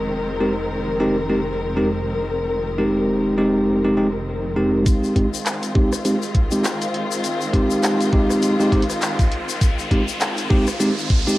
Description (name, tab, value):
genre	glitch hop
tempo	101 BPM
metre	4/4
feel	swing 58% on 16ths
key	F minor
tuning	A4 = 439 Hz
part	warm symphonic string section	sustained chords	0.0-11.4 s	Eb3 to Bb4	-25 LUFS	left 1 dB	sidechain pumping
part	phased detuned saw bass	bass	0.0-4.8 s	F1	-29 LUFS	equal	phaser, tube saturation
part	bell-like tine electric piano	stabs	0.4-11.4 s	Ab3 to G4	-20 LUFS	equal	vintage 12-bit sampler grit, sidechain pumping, low-pass filter, tape echo
part	drum and bass drum kit	drums	4.9-11.4 s	handclaps, hi-hat, rim click	-26 LUFS	equal	high-pass filter on hats, cassette tape, high-pass filter on snare, high-pass filter on room
part	electronic kick drum	drums	4.9-11.2 s	none	-18 LUFS	equal	cassette tape
part	tube shaker	percussion	4.9-11.4 s	none	-31 LUFS	left 9 dB	none
part	riser	sound effects	7.1-11.4 s	none	-31 LUFS	right 1 dB	none
room	light reverb, digital ambience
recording	home recording on cassette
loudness	-17 LUFS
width	side -17 dB against mid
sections	0.0-4.9 A section; 4.9-11.4 B section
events	build-up 4.9-11.4; filter sweep on tine electric piano 4.9-11.4; riser 7.1-11.4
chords	0.0 Fm7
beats	| 0.11 0.70 1.30 1.89 | 2.49 3.08 3.67 4.27 | 4.86 5.46 6.05 6.64 | 7.24 7.83 8.43 9.02 | 9.62 10.21 10.80